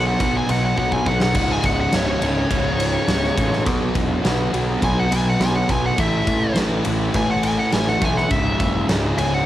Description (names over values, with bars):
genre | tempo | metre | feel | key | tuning
quiet-loud alternative rock | 104 BPM | 4/4 | straight | C# minor | A4 = 438 Hz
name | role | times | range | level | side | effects
nasal lead guitar with a parked wah | melody | 0.0-9.5 s | C#5 to G#5 | -23 LUFS | equal | overdrive, cassette tape, plate reverb
fuzz guitar | riff | 0.0-9.5 s | C#2 to B3 | -22 LUFS | equal | distortion
fuzz picked electric bass | bass | 0.0-9.4 s | C#1 to B1 | -23 LUFS | equal | overdrive
big rock drum kit | drums | 0.2-9.3 s | crash cymbal, kick drum, ride cymbal, snare drum | -23 LUFS | equal | cassette tape
room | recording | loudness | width
light reverb | home recording on cassette | -17 LUFS | side -13 dB against mid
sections
0.0-9.5 A section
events
lead electric guitar solo 0.0-9.5; drum fill 0.8-1.4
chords
0.0 B5; 1.4 C#5; 3.7 B5; 6.0 A5; 8.3 C#m